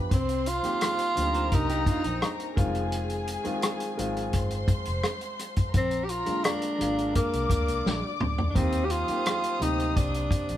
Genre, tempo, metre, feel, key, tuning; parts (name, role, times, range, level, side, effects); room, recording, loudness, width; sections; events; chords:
lush 1970s-style soul; 85 BPM; 4/4; straight; Eb major; A4 = 440 Hz
dark studio string section; second line; 0.0-10.6 s; Ab4 to Eb6; -36 LUFS; left 3 dB
warm grand piano; accompaniment; 0.0-10.6 s; C3 to G4; -33 LUFS; equal
vintage muted fingered electric bass; bass; 0.0-10.6 s; F1 to Eb2; -32 LUFS; equal
breathy tenor saxophone; melody; 0.1-10.6 s; Bb3 to G4; -28 LUFS; equal
warm soul drum kit; drums; 0.1-10.6 s; hi-hat, kick drum, rim click, snare drum, toms; -28 LUFS; equal
electric guitar through a small old amp; riff; 1.4-2.6 s; C4 to C5; -36 LUFS; right 2 dB; tremolo
moderate stone room reverb, RT60 1.1 s; band playing live in one room; -24 LUFS; side -12 dB against mid
0.0-10.6 A section
drum fill 7.9-8.6
0.1 Cm7; 2.6 Fm7; 5.7 Bb7; 8.6 Eb6